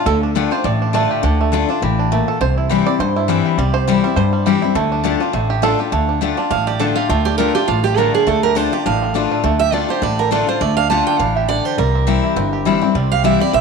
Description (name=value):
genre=bluegrass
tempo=205 BPM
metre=4/4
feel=swing 56% on 8ths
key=D minor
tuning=A4 = 441 Hz
part: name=bluegrass banjo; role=melody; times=0.0-13.6 s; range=D3 to D5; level=-21 LUFS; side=right 10 dB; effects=tape echo
part: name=picked steel-string acoustic guitar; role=accompaniment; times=0.0-13.6 s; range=G2 to F4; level=-18 LUFS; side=left 12 dB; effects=none
part: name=upright bass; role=bass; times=0.1-13.6 s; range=G1 to G2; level=-20 LUFS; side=right 1 dB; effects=none
part: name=picked steel-string acoustic guitar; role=melody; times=6.5-13.6 s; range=F4 to A5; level=-18 LUFS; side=right 9 dB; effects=none
room=moderate echo chamber reverb, RT60 1.9 s, studio reverb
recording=1960s-style stereo with parts hard left and right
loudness=-14 LUFS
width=side -5 dB against mid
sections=0.0-5.9 A section; 5.9-13.6 B section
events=five-string banjo solo 0.0-5.9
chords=0.0 Dm; 2.4 C; 4.8 Dm; 11.8 C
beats=| 0.06 0.36 0.65 0.94 | 1.24 1.53 1.82 2.12 | 2.41 2.70 3.00 3.29 | 3.58 3.87 4.17 4.46 | 4.75 5.04 5.34 5.63 | 5.92 6.22 6.51 6.80 | 7.10 7.39 7.68 7.97 | 8.27 8.56 8.86 9.15 | 9.44 9.73 10.03 10.32 | 10.61 10.90 11.20 11.49 | 11.78 12.08 12.37 12.66 | 12.96 13.25 13.54